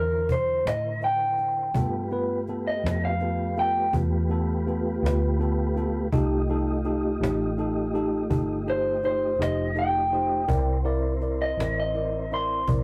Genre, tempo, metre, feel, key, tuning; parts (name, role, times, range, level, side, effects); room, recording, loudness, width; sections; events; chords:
slow blues; 55 BPM (dotted quarters); 12/8; straight; A4 = 440 Hz
electric guitar through a small old amp; melody; 0.0-12.7 s; Bb4 to C6; -28 LUFS; equal
mellow tonewheel organ; sustained chords; 0.0-12.8 s; D3 to Eb5; -34 LUFS; equal; chorus vibrato, fast rotary speaker
vintage muted fingered electric bass; bass; 0.0-12.8 s; F1 to A2; -31 LUFS; equal
cajon; drums; 0.3-12.8 s; -32 LUFS; equal
tine electric piano; accompaniment; 1.7-12.8 s; B3 to D5; -32 LUFS; equal
light reverb; rough rehearsal-room recording, warm saturation; -26 LUFS; mono
0.0-12.8 A section
0.0 C9; 1.7 G9; 6.1 F9; 10.5 C9